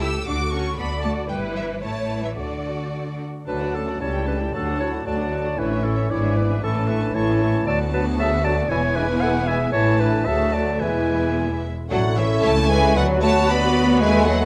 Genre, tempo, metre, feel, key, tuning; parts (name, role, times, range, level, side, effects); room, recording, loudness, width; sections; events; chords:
quick classical-period movement for symphony orchestra; 115 BPM; 2/4; straight; D major, A major from 7.7 s; A4 = 441 Hz
rich studio violin section; melody; 0.0-14.5 s; C#5 to E6; -32 LUFS; equal
warm studio violin section; second line; 0.0-14.5 s; E4 to D5; -33 LUFS; equal
dark studio viola section; accompaniment; 0.0-14.5 s; G#3 to D5; -32 LUFS; equal
clear studio cello section; bass; 0.0-14.5 s; C#2 to E4; -29 LUFS; equal
rich studio double bass section; bass; 0.0-14.5 s; E1 to D#2; -28 LUFS; equal
mellow cor anglais; second line; 3.5-14.5 s; B4 to A5; -33 LUFS; equal
mellow hollow concert flute; second line; 3.5-14.5 s; C#4 to F#5; -32 LUFS; equal
warm clarinet; second line; 3.5-14.5 s; E4 to F#5; -29 LUFS; equal
warm bassoon; accompaniment; 3.5-14.5 s; E3 to A3; -32 LUFS; equal
mellow French horn section; sustained chords; 3.5-14.5 s; E3 to G4; -29 LUFS; equal
moderate recital hall reverb, RT60 1.8 s; -21 LUFS; mono
0.0-3.5 A section; 3.5-11.9 B section; 11.9-14.5 C section
0.3 D; 1.3 Em/G; 1.8 A; 2.4 D; 4.0 A7/C#; 4.5 D; 5.6 A; 6.1 E7/G#; 6.6 A; 7.7 Bm7/D; 8.7 E; 9.7 A; 10.3 D; 10.8 E; 11.9 A; 12.4 A/C#; 13.0 Bm/D